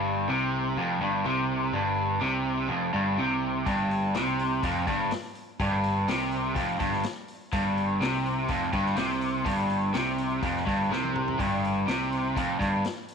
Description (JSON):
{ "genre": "blues rock power trio and southern rock", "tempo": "124 BPM", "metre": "4/4", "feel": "straight", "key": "unclear", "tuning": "A4 = 440 Hz", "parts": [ { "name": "overdriven electric guitar", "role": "riff", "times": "0.0-12.8 s", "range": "F2 to C3", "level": "-25 LUFS", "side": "equal", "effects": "none" }, { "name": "picked electric bass", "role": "bass", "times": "0.0-12.8 s", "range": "F1 to C2", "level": "-36 LUFS", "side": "equal", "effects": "none" }, { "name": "vintage drum kit", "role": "drums", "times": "3.7-13.1 s", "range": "hi-hat, kick drum, snare drum, toms", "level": "-36 LUFS", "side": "left 2 dB", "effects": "none" } ], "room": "light reverb", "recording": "1960s-style stereo", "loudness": "-25 LUFS", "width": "side -6 dB against mid", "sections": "0.0-13.1 A section", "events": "drum fill 10.9-11.4", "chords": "0.0 Fsus2", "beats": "0.29 0.78 1.26 | 1.74 2.22 2.70 3.18 | 3.66 4.14 4.63 5.11 | 5.59 6.07 6.56 7.04 | 7.52 8.01 8.49 8.97 | 9.46 9.94 10.42 10.91 | 11.39 11.88 12.36 12.85" }